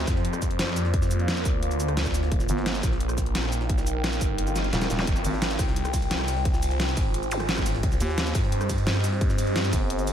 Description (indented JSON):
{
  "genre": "dark technical drum and bass",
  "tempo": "174 BPM",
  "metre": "4/4",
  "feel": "straight",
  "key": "F minor",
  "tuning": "A4 = 440 Hz",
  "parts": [
    { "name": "deep dark ambient pad", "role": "sustained chords", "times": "0.0-10.1 s", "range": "Bb3 to Ab5", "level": "-31 LUFS", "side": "equal", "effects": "chorus, built-in reverb, sidechain pumping" },
    { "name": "growling FM bass", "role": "bass", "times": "0.0-0.1, 2.5-5.6, 8.0-10.1 s", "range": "Eb1 to Eb2", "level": "-27 LUFS", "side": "equal", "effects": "none" },
    { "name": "phased detuned saw bass", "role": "bass", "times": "0.1-9.7 s", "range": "Eb1 to G2", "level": "-27 LUFS", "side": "equal", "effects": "phaser, tube saturation, sidechain pumping" },
    { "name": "dubstep drum kit", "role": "drums", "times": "0.1-10.1 s", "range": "cabasa, hi-hat, ride cymbal, rim click, snare drum", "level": "-30 LUFS", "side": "equal", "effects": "none" },
    { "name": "electronic kick drum", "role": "drums", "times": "0.1-9.8 s", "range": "none", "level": "-26 LUFS", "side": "equal", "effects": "none" },
    { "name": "jungle sampler-style drum kit", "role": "drums", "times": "0.1-10.1 s", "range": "hi-hat, snare drum", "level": "-38 LUFS", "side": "left 1 dB", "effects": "none" },
    { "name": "swell and zap", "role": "sound effects", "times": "4.5-5.1, 7.3-7.4 s", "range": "none", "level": "-34 LUFS", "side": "equal", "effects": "none" }
  ],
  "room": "digital ambience",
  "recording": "none",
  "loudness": "-23 LUFS",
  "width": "side -9 dB against mid",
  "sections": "0.0-10.1 A section",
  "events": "kick drops out 4.4-5.1; swell 4.5-5.1; drum fill 4.6-5.1",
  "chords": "0.0 Bb; 2.3 Eb; 5.1 Fm; 7.8 Cm",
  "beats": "0.25 0.59 | 0.94 1.28 1.63 1.97 | 2.31 2.66 3.00 3.35 | 3.69 4.04 4.38 4.73 | 5.07 5.42 5.76 6.11 | 6.45 6.80 7.14 7.49 | 7.83 8.18 8.52 8.87 | 9.21 9.56 9.90"
}